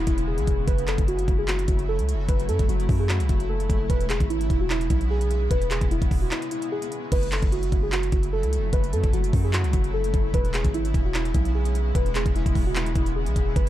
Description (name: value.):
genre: hip hop, trap.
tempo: 149 BPM.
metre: 4/4.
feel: half-time.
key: F# minor.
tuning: A4 = 437 Hz.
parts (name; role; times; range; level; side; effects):
muted felt-like synth keys; melody; 0.0-13.7 s; E4 to B4; -29 LUFS; equal; chorus.
granular cloud pad; sustained chords; 0.0-13.7 s; C#3 to E4; -33 LUFS; equal; built-in reverb.
long sustained 808-style bass; bass; 0.0-13.7 s; E1 to F#2; -25 LUFS; equal; none.
trap drum kit; drums; 0.1-13.7 s; crash cymbal, handclaps, hi-hat, kick drum; -24 LUFS; equal; overdrive.
room: little or no reverb.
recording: dark, warm production.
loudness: -21 LUFS.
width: side -13 dB against mid.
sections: 0.0-7.1 A section; 7.1-13.7 A section.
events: break 6.3-7.1.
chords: 0.0 E6; 0.7 F#m7; 3.9 E6; 7.1 F#m7; 10.3 E6.